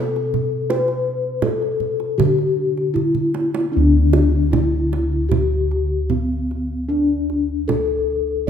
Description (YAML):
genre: Javanese gamelan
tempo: 76-84 BPM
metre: 4/4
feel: straight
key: D slendro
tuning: A4 = 436 Hz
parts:
  - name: gamelan-type bronze metallophone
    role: melody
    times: 0.0-8.5 s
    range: C4-40c to C5-40c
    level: -20 LUFS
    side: left 4 dB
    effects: none
  - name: gamelan-type bossed gongs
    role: bass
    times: 0.0-8.5 s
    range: D2 to C5-40c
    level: -20 LUFS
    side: equal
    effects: none
  - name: kendang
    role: percussion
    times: 0.2-7.9 s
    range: none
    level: -24 LUFS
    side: right 8 dB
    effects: none
room: light reverb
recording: minimal, uncompressed stereo recording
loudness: -17 LUFS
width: side -8 dB against mid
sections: 0.0-3.7 A section; 3.7-8.5 B section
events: drum fill 3.0-3.7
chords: none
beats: 0.00 | 0.71 1.45 2.19 2.96 | 3.74 4.53 5.32 6.11 | 6.89 7.68 8.47